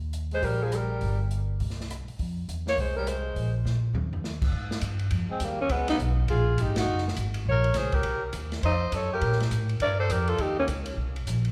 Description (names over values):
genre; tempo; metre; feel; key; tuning
jazz, small-group swing and bop; 205 BPM; 4/4; swing 62% on 8ths; unclear; A4 = 439 Hz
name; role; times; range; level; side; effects
upright bass; bass; 0.0-11.5 s; Gb1 to Bb2; -30 LUFS; equal; none
open jazz drum kit; drums; 0.1-11.5 s; crash cymbal, hi-hat, kick drum, ride cymbal, rim click, snare drum, toms; -36 LUFS; equal; none
growling alto saxophone; melody; 0.3-10.7 s; Bb3 to Eb5; -32 LUFS; equal; none
breathy tenor saxophone; second line; 0.3-10.7 s; F3 to C5; -36 LUFS; equal; none
room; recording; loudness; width
moderate scoring stage reverb, RT60 1.8 s; recorded in a church or concert hall; -28 LUFS; mono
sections
0.0-4.5 A section; 4.5-11.5 B section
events
drum fill 3.7-4.2; band accent 6.7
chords
0.0 Eb; 1.0 N.C.; 2.2 Fm; 3.4 N.C.; 4.5 Ab5; 5.7 Db7; 6.9 Gbadd9; 8.0 Cm; 8.6 F5; 9.2 Bb5; 10.4 Eb5